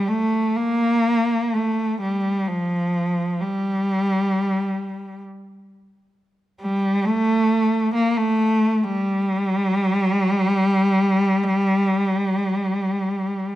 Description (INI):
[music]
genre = caucasian folk, Caucasian lament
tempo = free time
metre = none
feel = none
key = G minor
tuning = A4 = 440 Hz
[part]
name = warm cello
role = solo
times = 0.0-13.6 s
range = F3 to Bb3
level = -19 LUFS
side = equal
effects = none
[sound]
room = moderate recital hall reverb, RT60 1.8 s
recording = none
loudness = -18 LUFS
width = side -14 dB against mid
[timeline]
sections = 0.1-13.6 A section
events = none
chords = none